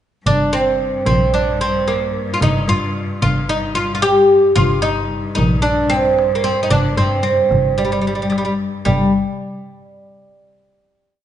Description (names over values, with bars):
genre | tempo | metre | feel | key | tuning
Arabic maqam ensemble | 112 BPM | 4/4 | straight | G maqam bayati | A4 = 441 Hz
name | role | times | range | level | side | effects
oud | melody | 0.3-9.1 s | G3 to G4 | -16 LUFS | equal | none
clear double bass | bass | 0.3-9.1 s | G1 to G2 | -22 LUFS | left 1 dB | none
clear cello | drone | 0.3-8.9 s | G2 | -26 LUFS | left 2 dB | none
darbuka | percussion | 0.3-9.1 s | none | -23 LUFS | right 1 dB | none
room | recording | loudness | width
moderate recital hall reverb, RT60 1.6 s | nothing above 10.7 kHz | -14 LUFS | side -10 dB against mid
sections
0.3-8.9 A section; 8.9-11.0 final note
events
none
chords
none